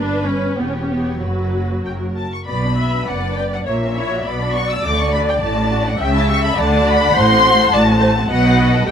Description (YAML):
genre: quick classical-period movement for string orchestra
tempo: 94-106 BPM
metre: 2/4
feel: rubato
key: B minor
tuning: A4 = 440 Hz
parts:
  - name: rich studio violin section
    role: melody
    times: 0.0-8.9 s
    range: A#4 to E6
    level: -20 LUFS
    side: left 2 dB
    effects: none
  - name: warm studio violin section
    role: second line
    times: 0.0-8.9 s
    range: A3 to F#5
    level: -23 LUFS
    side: left 1 dB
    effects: none
  - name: warm studio viola section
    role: accompaniment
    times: 0.0-8.9 s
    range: F#3 to E5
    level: -21 LUFS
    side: equal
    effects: none
  - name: warm studio cello section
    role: bass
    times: 0.0-8.9 s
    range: E2 to D3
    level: -21 LUFS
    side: equal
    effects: none
  - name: warm studio double bass section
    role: bass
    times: 0.0-8.9 s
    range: E1 to D2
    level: -21 LUFS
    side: right 2 dB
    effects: none
room: light reverb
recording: none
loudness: -14 LUFS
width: side -7 dB against mid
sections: 0.0-2.5 A section; 2.5-8.9 B section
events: none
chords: 0.0 G; 0.6 C#m7b5/E; 1.2 B5/F#; 2.5 Bm; 3.7 F#7/A#; 4.3 Bm; 4.8 D; 6.0 A7/C#; 6.6 D; 7.1 F#dim/A; 8.3 B7